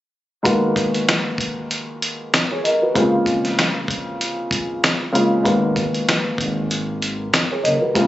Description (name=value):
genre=hip hop, boom-bap hip-hop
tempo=96 BPM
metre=4/4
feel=swing 55% on 16ths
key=G# dorian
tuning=A4 = 438 Hz
part: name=dark upright piano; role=accompaniment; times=0.4-8.1 s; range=B#2 to D#5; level=-19 LUFS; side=equal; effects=cassette tape, high-pass filter, low-pass filter
part: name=dusty soul sampler-style drum kit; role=drums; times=0.5-8.1 s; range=hi-hat, kick drum, snare drum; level=-20 LUFS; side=equal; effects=none
part: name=growling FM bass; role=bass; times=5.5-7.8 s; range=F#1 to G#1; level=-24 LUFS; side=equal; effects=none
room=light reverb, digital ambience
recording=recorded on a phone in the room, club reverb, nothing above 7.8 kHz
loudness=-17 LUFS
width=side -14 dB against mid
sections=0.5-8.1 A section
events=none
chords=0.5 G#m7; 3.0 A#m7; 5.5 G#m7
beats=| 0.45 1.08 1.70 2.33 | 2.95 3.58 4.20 4.83 | 5.45 6.08 6.70 7.33 | 7.95